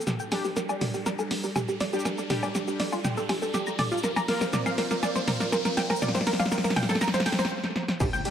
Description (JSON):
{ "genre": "melodic techno", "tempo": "121 BPM", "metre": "4/4", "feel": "straight", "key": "unclear", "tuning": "A4 = 442 Hz", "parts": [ { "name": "lush unison pad", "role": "sustained chords", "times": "0.0-8.3 s", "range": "G3 to A4", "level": "-36 LUFS", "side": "equal", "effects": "chorus, sidechain pumping" }, { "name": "punchy analog drum machine", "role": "drums", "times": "0.0-8.3 s", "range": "crash cymbal, hi-hat, shaker, snare drum, toms, woodblock", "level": "-28 LUFS", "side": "equal", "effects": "dub echo" }, { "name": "riser and impact", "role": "sound effects", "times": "0.0-8.3 s", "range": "none", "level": "-37 LUFS", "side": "equal", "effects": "none" }, { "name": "tight sequenced synth", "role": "arpeggios", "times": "0.1-8.3 s", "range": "F4 to G6", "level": "-29 LUFS", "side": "right 1 dB", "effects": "chorus, sidechain pumping, dub echo" }, { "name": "dark detuned saw bass", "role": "bass", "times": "0.1-8.1 s", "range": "none", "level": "barely audible", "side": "none", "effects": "none" }, { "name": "analog synth brass", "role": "stabs", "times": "0.3-4.4, 8.3 s", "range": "G3 to Bb4", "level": "-38 LUFS", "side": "left 2 dB", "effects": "none" }, { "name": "electronic hi-hat", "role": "drums", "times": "8.0-8.3 s", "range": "none", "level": "-47 LUFS", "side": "left 2 dB", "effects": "none" }, { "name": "electronic kick drum", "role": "drums", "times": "8.0-8.1 s", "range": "none", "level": "-29 LUFS", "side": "equal", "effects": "distortion, overdrive" } ], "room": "moderate plate reverb, RT60 2.6 s", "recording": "echo-heavy mix", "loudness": "-24 LUFS", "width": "side -9 dB against mid", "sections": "0.0-8.0 A section", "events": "build-up 0.0-8.0; drum fill 0.0-7.5, 7.6-8.0; riser 0.0-7.5; filter sweep on synth arpeggio sound 0.0-8.0; filter sweep on analog synth pad 0.0-8.0; break 7.5-8.0; impact 8.0-8.3", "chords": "0.1 G5; 4.0 Bbsus2", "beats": "| 0.07 0.56 1.06 1.56 | 2.05 2.55 3.04 3.54 | 4.04 4.53 5.03 5.52 | 6.02 6.51 7.01 7.51 | 8.00" }